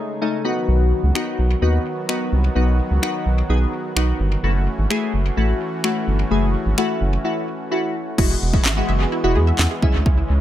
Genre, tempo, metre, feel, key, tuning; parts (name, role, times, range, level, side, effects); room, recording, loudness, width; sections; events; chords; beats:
dance-pop; 128 BPM; 4/4; straight; A4 = 440 Hz
soft supersaw; sustained chords; 0.0-10.4 s; C#3 to F#4; -27 LUFS; right 1 dB; sidechain pumping
glassy digital keys; accompaniment; 0.2-10.3 s; G#3 to G#4; -23 LUFS; left 2 dB; chorus, phaser, sidechain pumping
round analog bass; bass; 0.7-10.4 s; E1 to E2; -18 LUFS; equal; sidechain pumping
house drum kit; drums; 1.2-10.2 s; crash cymbal, finger snaps, handclaps, kick drum, snare drum; -22 LUFS; equal; overdrive, analog delay
wide unison pluck; arpeggios; 8.2-10.3 s; C#4 to E5; -28 LUFS; right 3 dB; ensemble chorus, sidechain pumping, analog delay
light reverb, digital ambience; echo-heavy mix; -17 LUFS; side -12 dB against mid
0.0-8.2 A section; 8.2-10.4 B section
break 7.2-8.2
0.5 B; 4.4 F#m7; 8.2 Eadd9; 9.8 C#m
0.22 | 0.69 1.15 1.62 2.09 | 2.56 3.03 3.50 3.97 | 4.43 4.90 5.37 5.84 | 6.31 6.78 7.25 7.72 | 8.19 8.65 9.12 9.59 | 10.06